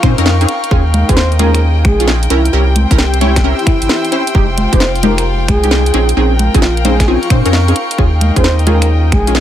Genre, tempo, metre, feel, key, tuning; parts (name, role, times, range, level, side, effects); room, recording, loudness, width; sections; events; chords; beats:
UK garage, two-step garage; 132 BPM; 4/4; swing 67% on 16ths; A4 = 440 Hz
rich chamber violin section; sustained chords; 0.0-9.4 s; G5; -23 LUFS; left 2 dB; sidechain pumping
punchy chord stab; stabs; 0.0-9.4 s; Ab3 to Db5; -17 LUFS; equal; chorus, digital delay
saturated sub bass; bass; 0.0-9.4 s; F1 to Bb2; -13 LUFS; equal
electronic kick drum; drums; 0.0-9.2 s; -13 LUFS; equal
garage drum kit; drums; 0.0-9.4 s; congas, finger snaps, hi-hat, snare drum; -17 LUFS; equal
airy breathy pad; texture; 0.0-9.4 s; C4 to Db6; -21 LUFS; left 2 dB; chorus, sidechain pumping
breathy flute-like synth lead; melody; 1.1-9.3 s; E4 to C5; -20 LUFS; equal; chorus, cassette tape, digital delay
digital ambience; -9 LUFS; side -11 dB against mid
0.0-9.4 A section
0.5 Eb9sus4; 2.3 C7b9; 4.3 Fm9; 5.9 Bbm11; 7.8 Eb9sus4
0.26 | 0.71 1.17 1.62 2.08 | 2.53 2.98 3.44 3.89 | 4.35 4.80 5.26 5.71 | 6.17 6.62 7.08 7.53 | 7.99 8.44 8.89 9.35